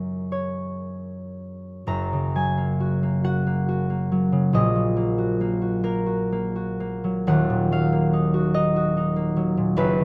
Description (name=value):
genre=classical, solo harp piece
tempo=36-48 BPM (dotted quarters)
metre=6/8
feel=rubato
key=F# major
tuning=A4 = 440 Hz
part: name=concert harp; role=solo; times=0.0-10.0 s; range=D#1 to A#5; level=-23 LUFS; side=equal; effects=none
room=light reverb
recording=none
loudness=-23 LUFS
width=mono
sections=0.0-1.9 A section; 1.9-10.0 B section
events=none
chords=0.0 F#; 4.6 F#/A#; 7.3 D#m